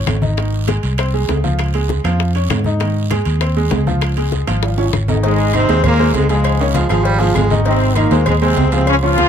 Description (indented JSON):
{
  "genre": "latin, salsa",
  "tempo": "198 BPM",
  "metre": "4/4",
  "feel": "straight",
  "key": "Ab major",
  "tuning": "A4 = 440 Hz",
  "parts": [
    { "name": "bright upright piano", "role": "accompaniment", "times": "0.0-9.3 s", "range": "Db3 to Eb5", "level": "-20 LUFS", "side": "right 1 dB", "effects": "none" },
    { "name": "fingered electric bass", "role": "bass", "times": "0.0-9.3 s", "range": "Ab1 to Ab2", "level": "-16 LUFS", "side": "equal", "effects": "none" },
    { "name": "bongos and cowbell", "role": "percussion", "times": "0.1-9.3 s", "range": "none", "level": "-25 LUFS", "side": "left 9 dB", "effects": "none" },
    { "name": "claves", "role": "percussion", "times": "0.1-9.0 s", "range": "none", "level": "-30 LUFS", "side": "left 5 dB", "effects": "none" },
    { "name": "congas", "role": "percussion", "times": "0.1-9.3 s", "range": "none", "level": "-24 LUFS", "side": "left 2 dB", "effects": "none" },
    { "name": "guiro", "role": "percussion", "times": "0.1-9.3 s", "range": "none", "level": "-33 LUFS", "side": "right 6 dB", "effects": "none" },
    { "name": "timbales and agogo bells", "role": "percussion", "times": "0.1-9.3 s", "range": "none", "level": "-25 LUFS", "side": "right 4 dB", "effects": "none" },
    { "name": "brilliant trombone section", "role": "melody", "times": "5.2-9.3 s", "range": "Ab2 to F4", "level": "-17 LUFS", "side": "left 1 dB", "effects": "none" },
    { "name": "clear baritone saxophone", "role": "second line", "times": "6.6-7.6 s", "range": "Eb3 to Ab3", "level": "-22 LUFS", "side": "right 4 dB", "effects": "none" }
  ],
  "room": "little or no reverb",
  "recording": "close, detailed microphones",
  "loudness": "-13 LUFS",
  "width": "side -8 dB against mid",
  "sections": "0.0-5.2 A section; 5.2-9.3 B section",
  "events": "drum fill 4.6-5.2",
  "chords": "0.4 Ab6; 1.6 Db; 2.8 Ab6; 4.0 Db; 5.2 Ab6; 6.4 Db; 7.7 Ab6",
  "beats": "0.07 | 0.38 0.68 0.98 1.29 | 1.59 1.90 2.20 2.50 | 2.81 3.11 3.41 3.71 | 4.02 4.32 4.62 4.93 | 5.23 5.54 5.84 6.14 | 6.45 6.75 7.05 7.36 | 7.66 7.96 8.27 8.57 | 8.87 9.18"
}